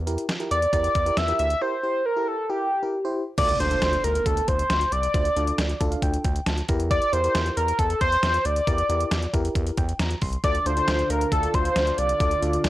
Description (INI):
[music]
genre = synth-pop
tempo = 136 BPM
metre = 4/4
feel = straight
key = D minor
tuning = A4 = 440 Hz
[part]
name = round analog bass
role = bass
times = 0.0-12.7 s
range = C2 to E2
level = -27 LUFS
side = equal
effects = none
[part]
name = FM electric piano with auto-pan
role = accompaniment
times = 0.1-12.7 s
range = D4 to C6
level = -31 LUFS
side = equal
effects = none
[part]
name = detuned 8-bit digital drum machine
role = drums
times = 0.1-12.7 s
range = crash cymbal, hi-hat, kick drum, snare drum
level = -27 LUFS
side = equal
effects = overdrive
[part]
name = octave-doubled lead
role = melody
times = 0.5-12.7 s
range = G4 to E5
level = -23 LUFS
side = equal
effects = chorus, plate reverb
[part]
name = impact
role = sound effects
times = 3.4-5.1 s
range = none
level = -35 LUFS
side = equal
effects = none
[part]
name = chorused pulse-width pad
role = sustained chords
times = 10.4-12.7 s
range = D3 to F4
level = -30 LUFS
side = equal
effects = none
[sound]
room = light reverb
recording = dry, gritty hardware recording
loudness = -21 LUFS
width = side -15 dB against mid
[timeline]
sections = 0.0-3.4 A section; 3.4-12.7 B section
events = break 1.6-3.4; impact 3.4-5.1; FM electric piano fill 5.6-6.9, 9.6-10.4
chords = 0.0 Edim; 3.4 Dm; 6.7 Edim; 10.4 Dm